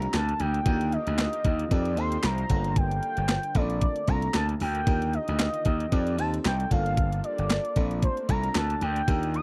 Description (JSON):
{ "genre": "early-eighties boogie funk", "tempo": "114 BPM", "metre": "4/4", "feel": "swing 56% on 16ths", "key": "unclear", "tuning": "A4 = 440 Hz", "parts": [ { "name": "gliding portamento lead", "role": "melody", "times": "0.0-9.4 s", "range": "C5 to Eb6", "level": "-33 LUFS", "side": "equal", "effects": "chorus" }, { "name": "FM electric piano", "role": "accompaniment", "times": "0.0-9.4 s", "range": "A3 to C5", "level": "-37 LUFS", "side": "equal", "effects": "chorus" }, { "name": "lush unison pad", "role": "sustained chords", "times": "0.0-9.4 s", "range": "D3 to C5", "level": "-43 LUFS", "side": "equal", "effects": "none" }, { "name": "gritty slap bass", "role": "bass", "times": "0.0-9.4 s", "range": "G1 to F2", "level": "-30 LUFS", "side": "equal", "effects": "overdrive" }, { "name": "clean 12-bit digital drum machine", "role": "drums", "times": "0.0-9.4 s", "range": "handclaps, hi-hat, kick drum, snare drum", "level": "-29 LUFS", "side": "equal", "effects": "overdrive" } ], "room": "little or no reverb", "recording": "dry, close 1970s-style studio recording", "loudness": "-26 LUFS", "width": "mono", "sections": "0.0-9.4 A section", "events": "none", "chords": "0.0 Bbmaj7; 0.7 Ebmaj7; 1.7 F7; 2.5 Gm7; 3.6 Bbmaj7; 4.9 Ebmaj7; 5.9 F7; 6.7 Gm7; 7.8 Bbmaj7" }